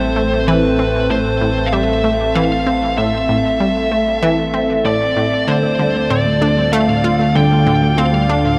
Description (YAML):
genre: ambient, sequencer-driven space music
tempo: 96 BPM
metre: 4/4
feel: straight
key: A minor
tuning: A4 = 440 Hz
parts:
  - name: fuzz lead guitar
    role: melody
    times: 0.0-8.6 s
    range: B4 to G5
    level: -20 LUFS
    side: equal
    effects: distortion, tape echo
  - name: evolving wavetable pad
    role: sustained chords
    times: 0.0-8.6 s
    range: D3 to A4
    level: -22 LUFS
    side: equal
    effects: chorus, built-in reverb
  - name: analog drone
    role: bass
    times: 0.0-8.6 s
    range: A1 to D2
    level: -24 LUFS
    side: equal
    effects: chorus
  - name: analog pluck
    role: riff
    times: 0.2-8.4 s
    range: A2 to F4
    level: -22 LUFS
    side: equal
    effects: chorus, tape echo
  - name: thumb-piano-like synth pluck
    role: arpeggios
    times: 5.5-8.6 s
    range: A2 to A3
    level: -22 LUFS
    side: equal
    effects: chorus, tape echo
room: wet huge ambient reverb, RT60 7.7 s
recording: none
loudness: -15 LUFS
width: mono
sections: 0.0-8.6 A section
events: none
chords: 0.0 Am; 5.5 Dm